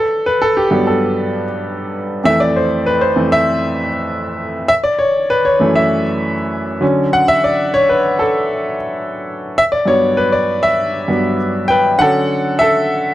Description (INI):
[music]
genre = soul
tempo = 98 BPM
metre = 4/4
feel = straight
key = D major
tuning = A4 = 440 Hz
[part]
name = clear baby grand piano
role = solo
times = 0.0-13.1 s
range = F2 to G5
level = -13 LUFS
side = equal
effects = none
[sound]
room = studio reverb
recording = dry, close 1970s-style studio recording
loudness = -13 LUFS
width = side -14 dB against mid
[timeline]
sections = 0.0-12.0 A section; 12.0-13.1 B section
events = grand piano solo 0.0-12.0, 12.0-13.1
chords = 0.0 Gmaj9; 2.2 Fmaj7; 4.7 F#m7; 6.8 Dmaj7; 9.6 Gmaj7; 12.0 Dmaj9